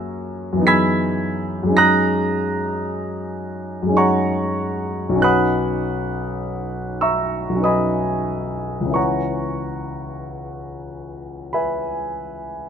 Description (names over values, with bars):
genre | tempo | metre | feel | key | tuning
classical, impressionist solo piano | 39-55 BPM | 3/4 | rubato | C# dorian | A4 = 440 Hz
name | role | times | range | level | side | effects
warm grand piano | solo | 0.0-12.7 s | B1 to B6 | -19 LUFS | equal | none
room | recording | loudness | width
light reverb | close, detailed microphones | -18 LUFS | side -7 dB against mid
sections
0.0-12.7 A section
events
none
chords
0.0 F#9; 0.7 Emaj9/F#; 1.8 F#69; 5.3 Badd9; 9.0 C#m7